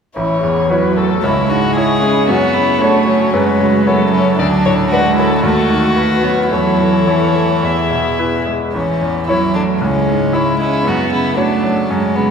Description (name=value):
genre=quick classical-period movement for piano quintet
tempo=114 BPM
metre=4/4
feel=rubato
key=A major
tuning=A4 = 441 Hz
part: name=dark violin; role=melody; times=0.2-11.8 s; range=A4 to E5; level=-20 LUFS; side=left 6 dB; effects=none
part: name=warm cello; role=second line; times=0.2-12.3 s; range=E3 to C#4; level=-16 LUFS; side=right 4 dB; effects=none
part: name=bright concert grand piano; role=accompaniment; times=0.2-12.3 s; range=A1 to D5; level=-17 LUFS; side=left 1 dB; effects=none
part: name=dark viola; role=accompaniment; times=0.2-11.8 s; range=D4 to A4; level=-23 LUFS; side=right 4 dB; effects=none
part: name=rich violin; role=second line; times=1.2-12.3 s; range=B3 to G#4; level=-19 LUFS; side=left 3 dB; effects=none
room=wet concert hall reverb, RT60 2.0 s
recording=none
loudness=-12 LUFS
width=side -6 dB against mid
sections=0.2-12.3 A section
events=none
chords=0.2 A; 1.2 C#m; 2.3 F#m; 4.4 D; 5.4 B7/D#; 6.5 A/E; 7.6 E; 8.7 A; 9.8 C#m; 10.9 F#m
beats=| 0.16 0.70 1.23 1.76 | 2.29 2.81 3.34 3.87 | 4.39 4.91 5.44 5.97 | 6.52 7.07 7.63 8.19 | 8.74 9.29 9.81 10.34 | 10.86 11.38 11.90